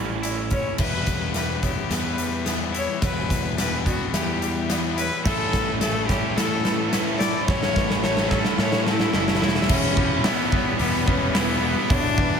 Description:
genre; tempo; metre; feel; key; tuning
post-rock; 108 BPM; 4/4; straight; E dorian; A4 = 441 Hz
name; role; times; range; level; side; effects
felt-muted upright piano; arpeggios; 0.0-12.4 s; B4 to E5; -38 LUFS; right 5 dB; none
twangy electric guitar; arpeggios; 0.0-12.4 s; E2 to E4; -34 LUFS; left 2 dB; spring reverb, tape echo
cranked stack guitar; riff; 0.0-0.8, 5.2-12.4 s; A2 to A4; -28 LUFS; right 13 dB; overdrive
fuzz picked electric bass; bass; 0.0-12.4 s; E1 to A2; -28 LUFS; equal; overdrive
huge arena drum kit; drums; 0.2-12.3 s; crash cymbal, hi-hat, kick drum, snare drum; -24 LUFS; equal; none
bright cello; melody; 0.5-12.4 s; B3 to D5; -27 LUFS; left 3 dB; tape echo
fuzz guitar; riff; 0.8-12.4 s; A2 to E4; -29 LUFS; left 14 dB; distortion
room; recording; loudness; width
light reverb, small room ambience; none; -20 LUFS; side -6 dB against mid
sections
0.8-9.7 A section; 9.7-12.4 B section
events
build-up 0.8-9.7; drum fill 0.8-9.7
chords
0.0 A; 0.8 Em; 5.3 A; 9.7 Em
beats
0.24 | 0.80 1.35 1.91 2.47 | 3.03 3.58 4.14 4.70 | 5.25 5.81 6.37 6.92 | 7.48 8.03 8.59 9.14 | 9.69 10.25 10.80 11.35 | 11.90

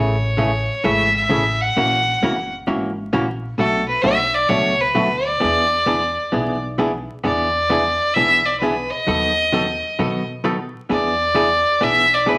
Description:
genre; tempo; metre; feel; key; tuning
country, western swing; 131 BPM; 4/4; swing 68% on 8ths; unclear; A4 = 442 Hz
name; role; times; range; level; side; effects
clear fiddle; melody; 0.0-12.4 s; A4 to F#5; -20 LUFS; equal; none
archtop guitar, miked and amplified; accompaniment; 0.0-12.4 s; B2 to A#4; -24 LUFS; equal; none
upright bass; bass; 0.0-12.4 s; F#1 to B2; -30 LUFS; equal; none
room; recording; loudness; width
wet studio reverb, RT60 0.7 s; vinyl crackle; -19 LUFS; mono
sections
0.0-12.4 A section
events
none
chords
0.0 Amaj7; 1.8 F#7; 3.6 Bm7; 5.4 E7; 9.1 B7/D#; 10.9 E7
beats
0.38 0.84 1.30 | 1.75 2.21 2.67 3.13 | 3.58 4.04 4.50 4.96 | 5.41 5.87 6.33 6.79 | 7.24 7.70 8.16 8.61 | 9.07 9.53 9.98 10.44 | 10.90 11.35 11.81 12.27

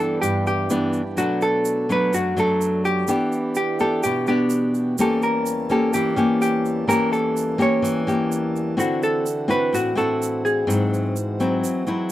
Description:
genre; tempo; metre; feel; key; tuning
bossa nova; 126 BPM; 4/4; straight; E minor; A4 = 440 Hz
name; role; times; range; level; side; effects
vintage hollow-body jazz guitar; melody; 0.0-12.1 s; F#4 to C#5; -22 LUFS; right 1 dB; none
nylon-string guitar; accompaniment; 0.0-12.1 s; F#2 to G4; -21 LUFS; left 1 dB; none
pedal harmonium; sustained chords; 0.0-12.1 s; E2 to A5; -31 LUFS; right 2 dB; none
egg shaker; percussion; 0.2-12.1 s; none; -36 LUFS; right 8 dB; none
room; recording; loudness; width
little or no reverb; dry, close 1970s-style studio recording; -19 LUFS; side -14 dB against mid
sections
0.0-12.1 A section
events
none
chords
0.0 Em7/G; 1.2 Bm7; 3.1 Em7; 5.0 A7b9/E; 8.8 D9; 10.7 G#7b13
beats
0.23 0.71 | 1.18 1.66 2.13 2.61 | 3.08 3.56 4.03 4.51 | 4.98 5.46 5.93 6.41 | 6.88 7.36 7.83 8.31 | 8.78 9.26 9.73 10.21 | 10.68 11.16 11.63 12.11

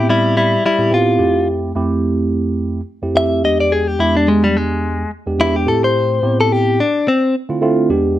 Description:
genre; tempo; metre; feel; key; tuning
blues; 107 BPM; 4/4; swing 56% on 16ths; A minor; A4 = 441 Hz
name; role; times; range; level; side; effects
direct-recorded clean electric guitar; melody; 0.0-7.3 s; G3 to E5; -15 LUFS; left 2 dB; none
mellow tine electric piano; accompaniment; 0.0-8.2 s; E2 to G4; -16 LUFS; right 2 dB; phaser
room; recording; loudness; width
moderate studio reverb, RT60 0.7 s; none; -13 LUFS; side -13 dB against mid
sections
0.0-8.2 A section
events
clean electric guitar solo 0.0-8.2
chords
0.0 Am7; 1.2 Fmaj7; 3.4 E7#9; 5.7 Am7; 6.8 Dm7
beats
0.08 0.64 | 1.20 1.75 2.31 2.87 | 3.43 3.99 4.55 5.11 | 5.67 6.23 6.79 7.35 | 7.90

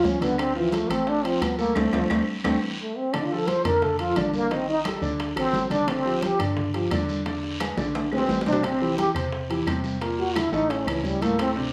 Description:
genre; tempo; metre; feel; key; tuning
Afro-Cuban jazz; 175 BPM; 4/4; straight; D minor; A4 = 440 Hz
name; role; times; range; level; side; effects
trombone with plunger mute; melody; 0.0-11.5 s; E3 to C5; -27 LUFS; equal; none
warm grand piano; accompaniment; 0.0-11.7 s; A2 to Eb5; -29 LUFS; equal; none
hollow knocking FM bass; bass; 0.0-11.7 s; G1 to G2; -36 LUFS; equal; none
bongos; percussion; 0.0-11.7 s; none; -40 LUFS; equal; none
congas; percussion; 0.0-11.7 s; none; -35 LUFS; equal; none
guiro; percussion; 0.0-11.7 s; none; -42 LUFS; equal; none
timbales; percussion; 0.2-11.6 s; none; -37 LUFS; equal; none
claves; percussion; 0.4-11.6 s; none; -41 LUFS; equal; none
room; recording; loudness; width
moderate large studio reverb, RT60 1.1 s; studio reverb; -25 LUFS; mono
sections
0.0-3.1 A section; 3.1-11.7 A section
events
trombone solo 0.0-11.7; band accent 1.8-3.1; drum fill 2.1-3.1, 7.6-8.6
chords
0.4 Dm7; 3.1 Bbmaj7; 4.5 Cm69/A; 5.2 D7; 5.9 G7sus4; 7.3 E7; 8.6 Am7; 10.0 F#7alt; 10.7 A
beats
0.04 | 0.39 0.73 1.07 1.42 | 1.76 2.10 2.45 2.79 | 3.13 3.48 3.82 4.17 | 4.51 4.85 5.20 5.54 | 5.88 6.23 6.57 6.92 | 7.26 7.60 7.95 8.29 | 8.63 8.98 9.32 9.67 | 10.01 10.36 10.70 11.04 | 11.39

